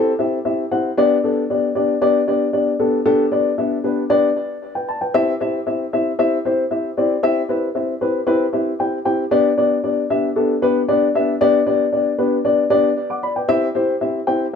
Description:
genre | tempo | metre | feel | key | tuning
soul | 115 BPM | 4/4 | straight | G major | A4 = 440 Hz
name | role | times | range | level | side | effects
dark upright piano | solo | 0.0-14.4 s | B3 to D6 | -16 LUFS | left 2 dB | tape echo
room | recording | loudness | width
moderate studio reverb, RT60 0.5 s | none | -16 LUFS | side -6 dB against mid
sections
0.0-9.3 A section; 9.3-14.6 B section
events
none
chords
0.0 C; 1.0 G; 5.1 C; 9.3 G; 13.5 C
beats
0.46 | 0.98 1.50 2.02 2.54 | 3.06 3.58 4.10 4.62 | 5.14 5.66 6.18 6.71 | 7.23 7.75 8.27 8.79 | 9.31 9.84 10.36 10.88 | 11.40 11.92 12.45 12.97 | 13.49 14.01

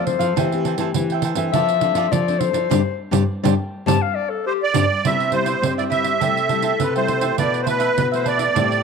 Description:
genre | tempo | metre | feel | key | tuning
samba and choro | 103 BPM | 4/4 | straight | C major | A4 = 440 Hz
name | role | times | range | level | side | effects
mellow clarinet | second line | 0.0-8.8 s | G4 to A5 | -23 LUFS | left 11 dB | none
cavaquinho | accompaniment | 0.0-8.8 s | E4 to G5 | -27 LUFS | right 12 dB | none
nylon-string guitar | accompaniment | 0.0-8.8 s | F2 to A4 | -26 LUFS | left 13 dB | none
nylon-string guitar | bass | 0.0-8.8 s | G2 to C4 | -24 LUFS | equal | none
pandeiro | percussion | 0.1-8.8 s | none | -25 LUFS | right 9 dB | none
musette accordion | melody | 4.5-8.8 s | B4 to E5 | -20 LUFS | right 5 dB | none
room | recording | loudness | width
moderate spring reverb, RT60 1.9 s, studio ambience | 1960s-style stereo with parts hard left and right | -17 LUFS | side -5 dB against mid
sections
0.0-5.0 A section; 5.0-8.8 B section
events
clarinet solo 0.0-5.0; band accent 2.7-5.0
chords
0.4 Am7/E; 1.5 Dm7/F; 2.7 Gsus4; 5.0 Cmaj7; 6.2 Am7/C; 7.4 Esus4/B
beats
| 0.36 0.95 1.53 2.12 | 2.71 3.29 3.87 4.46 | 5.04 5.63 6.21 6.80 | 7.38 7.97 8.55

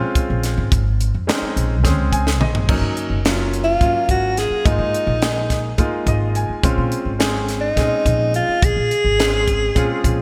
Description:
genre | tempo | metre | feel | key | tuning
electric jazz fusion | 212 BPM (eighths) | 7/8 | straight | Bb minor | A4 = 440 Hz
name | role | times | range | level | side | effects
warm concert grand piano | accompaniment | 0.0-10.2 s | Gb3 to Ab5 | -26 LUFS | equal | none
upright bass | bass | 0.2-10.2 s | Gb1 to Bb2 | -23 LUFS | equal | none
crisp fusion drum kit | drums | 0.2-10.2 s | crash cymbal, hi-hat, kick drum, snare drum, toms | -23 LUFS | equal | gated reverb
warm alto saxophone | melody | 3.6-10.2 s | Eb4 to Ab4 | -21 LUFS | equal | none
room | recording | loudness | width
light reverb, small room ambience | bright 1980s-style digital production | -18 LUFS | mono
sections
0.0-2.7 A section; 2.7-10.2 B section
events
grand piano fill 1.8-2.7, 5.8-6.6; drum fill 2.3-2.7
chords
0.0 Bbm9; 2.7 Ab7sus4; 4.7 Bb7sus4/Ab; 6.6 Bbm9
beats
0.15 0.44 | 0.72 1.00 1.28 1.56 1.84 2.12 2.40 | 2.69 2.97 3.25 3.53 3.81 4.10 4.38 | 4.66 4.94 5.22 5.51 5.79 6.07 6.36 | 6.64 6.92 7.20 7.49 7.77 8.05 8.34 | 8.62 8.90 9.19 9.47 9.75 10.04

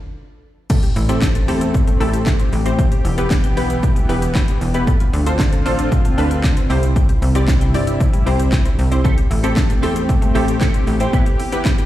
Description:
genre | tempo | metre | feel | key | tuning
dance-pop | 115 BPM | 4/4 | straight | A minor | A4 = 440 Hz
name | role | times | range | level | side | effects
lush unison pad | sustained chords | 1.4-11.9 s | C3 to G4 | -24 LUFS | left 1 dB | chorus, sidechain pumping
mallet-like synth pluck | arpeggios | 0.7-11.9 s | G3 to G5 | -30 LUFS | left 4 dB | chorus, sidechain pumping, ping-pong delay
house drum kit | drums | 0.7-11.9 s | crash cymbal, handclaps, hi-hat, kick drum, shaker, snare drum | -17 LUFS | equal | overdrive
impact | sound effects | 0.7-2.8 s | none | -27 LUFS | equal | none
plucky analog bass | bass | 1.0-11.1 s | E1 to G2 | -20 LUFS | equal | sidechain pumping
punchy chord stab | accompaniment | 1.1-11.8 s | B3 to D5 | -24 LUFS | equal | chorus, sidechain pumping
twelve-string electric guitar | riff | 9.0-11.8 s | B3 to A4 | -26 LUFS | right 5 dB | analog chorus
room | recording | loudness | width
light reverb | played on a big sound system in a bare room, large studio reverb | -14 LUFS | side -14 dB against mid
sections
0.7-11.9 A section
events
stop 0.0-0.7; impact 0.7-2.8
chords
0.0 N.C.; 0.7 Am7; 2.8 Em; 4.9 Dm7; 6.7 C; 9.0 Am7; 11.1 Em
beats
0.18 | 0.70 1.22 1.74 2.27 | 2.79 3.31 3.83 4.35 | 4.87 5.39 5.92 6.44 | 6.96 7.48 8.00 8.53 | 9.05 9.57 10.09 10.61 | 11.13 11.66

